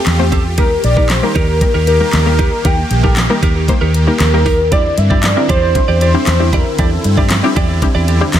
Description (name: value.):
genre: dance-pop.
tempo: 116 BPM.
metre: 4/4.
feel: straight.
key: unclear.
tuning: A4 = 444 Hz.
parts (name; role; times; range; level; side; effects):
warm velvety synth lead; melody; 0.0-7.3 s; G4 to G5; -18 LUFS; left 1 dB; chorus, ping-pong delay.
punchy chord stab; accompaniment; 0.0-8.4 s; G3 to C5; -20 LUFS; left 2 dB; chorus, sidechain pumping.
supersaw chords; sustained chords; 0.0-8.4 s; D3 to G4; -22 LUFS; equal; sidechain pumping.
vintage muted fingered electric bass; bass; 0.1-8.4 s; Bb1 to G2; -15 LUFS; equal; sidechain pumping.
smooth R&B drum kit; drums; 0.1-8.4 s; handclaps, hi-hat, kick drum, snare drum; -16 LUFS; equal; none.
direct-recorded clean electric guitar; riff; 0.2-8.4 s; C4 to D5; -22 LUFS; right 6 dB; wide subtle chorus.
group handclap; percussion; 5.2-8.4 s; none; -28 LUFS; left 6 dB; none.
room: little or no reverb.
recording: none.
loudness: -10 LUFS.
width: side -10 dB against mid.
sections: 0.0-8.4 A section.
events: none.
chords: 0.0 Fadd9; 0.6 Eb; 4.7 Cadd9/E.